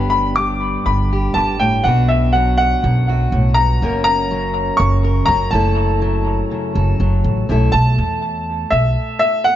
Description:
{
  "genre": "indie folk with a building arrangement",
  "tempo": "122 BPM",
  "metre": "4/4",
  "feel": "straight",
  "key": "unclear",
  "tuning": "A4 = 439 Hz",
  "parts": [
    { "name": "bright upright piano", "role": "melody", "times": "0.0-9.6 s", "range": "E5 to D6", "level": "-18 LUFS", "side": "equal", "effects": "dub echo" },
    { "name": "fingerpicked steel-string acoustic guitar", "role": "accompaniment", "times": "0.0-9.6 s", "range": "F#2 to A#4", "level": "-21 LUFS", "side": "left 1 dB", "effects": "dub echo" },
    { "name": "upright bass", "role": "bass", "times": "0.0-8.9 s", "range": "F#1 to E2", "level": "-17 LUFS", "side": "equal", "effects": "none" }
  ],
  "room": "light reverb, small room ambience",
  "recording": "echo-heavy mix, nothing above 7.7 kHz",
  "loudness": "-14 LUFS",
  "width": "side -12 dB against mid",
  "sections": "0.0-7.7 A section; 7.7-9.6 B section",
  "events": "none",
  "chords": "0.0 G; 1.9 Bm; 3.8 F#; 5.5 F#m7; 7.7 A5/B",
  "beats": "0.37 0.87 1.36 | 1.85 2.34 2.84 3.33 | 3.82 4.31 4.80 5.29 | 5.78 6.27 6.76 7.25 | 7.74 8.23 8.73 9.22"
}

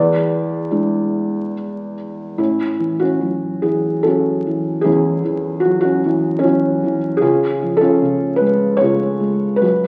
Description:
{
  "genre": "classical, lyrical solo piano",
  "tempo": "74 BPM",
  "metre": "3/4",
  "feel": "rubato",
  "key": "A major",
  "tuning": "A4 = 437 Hz",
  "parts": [
    { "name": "felt-muted upright piano", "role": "solo", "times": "0.0-9.9 s", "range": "E2 to D5", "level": "-18 LUFS", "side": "equal", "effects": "none" }
  ],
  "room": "moderate concert hall reverb, RT60 1.9 s",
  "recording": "very old 78 rpm record, vinyl crackle",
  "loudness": "-17 LUFS",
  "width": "mono",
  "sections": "0.0-2.4 A section; 2.4-9.9 B section",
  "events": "none",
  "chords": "0.0 E7; 2.4 A6; 7.2 C#",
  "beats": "0.72 1.55 | 2.39 3.22 4.05 | 4.85 5.65 6.43 | 7.22 8.01 8.81 | 9.63"
}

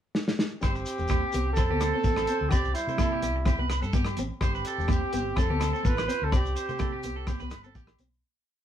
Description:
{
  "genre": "highlife guitar band",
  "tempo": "126 BPM",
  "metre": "4/4",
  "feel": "straight",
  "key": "unclear",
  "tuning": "A4 = 440 Hz",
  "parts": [
    { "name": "warm soul drum kit", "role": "drums", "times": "0.1-8.1 s", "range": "hi-hat, kick drum, rim click, snare drum", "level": "-28 LUFS", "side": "equal", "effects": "none" },
    { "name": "breathy trumpet", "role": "melody", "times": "0.6-7.7 s", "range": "E4 to B4", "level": "-31 LUFS", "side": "right 2 dB", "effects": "none" },
    { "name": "bright alto saxophone", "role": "second line", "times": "0.6-7.7 s", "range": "G3 to F4", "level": "-40 LUFS", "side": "right 1 dB", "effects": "none" },
    { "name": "fingerpicked steel-string acoustic guitar", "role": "accompaniment", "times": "0.6-8.2 s", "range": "A3 to D4", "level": "-37 LUFS", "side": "left 3 dB", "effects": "none" },
    { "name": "electric guitar at the edge of break-up", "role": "arpeggios", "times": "0.6-8.0 s", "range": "G4 to D5", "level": "-35 LUFS", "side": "right 4 dB", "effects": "none" },
    { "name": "hollow-body short-scale fingered electric bass", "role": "bass", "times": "0.6-8.2 s", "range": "E1 to C3", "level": "-31 LUFS", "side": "left 1 dB", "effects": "none" },
    { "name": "agogo bells", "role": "percussion", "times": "0.6-8.0 s", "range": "none", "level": "-42 LUFS", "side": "left 8 dB", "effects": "none" },
    { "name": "congas", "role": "percussion", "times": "0.6-8.1 s", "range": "none", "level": "-38 LUFS", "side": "right 10 dB", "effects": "none" },
    { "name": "shekere", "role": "percussion", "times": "0.6-8.2 s", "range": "none", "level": "-38 LUFS", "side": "left 3 dB", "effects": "none" }
  ],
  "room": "moderate studio reverb, RT60 0.6 s",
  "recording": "band playing live in one room",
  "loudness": "-25 LUFS",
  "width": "side -10 dB against mid",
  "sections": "0.0-0.6 pickup bar; 0.6-8.2 A section",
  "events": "drum fill 0.1-0.6; fade-out 6.3-8.2",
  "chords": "0.0 N.C.; 0.6 Gsus4; 1.6 F (rootless); 2.5 C; 4.4 Gsus4; 5.4 F; 6.3 C5",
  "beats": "0.14 | 0.62 1.09 1.56 2.04 | 2.51 2.99 3.46 3.94 | 4.42 4.89 5.37 5.84 | 6.32 6.80 7.28 7.75"
}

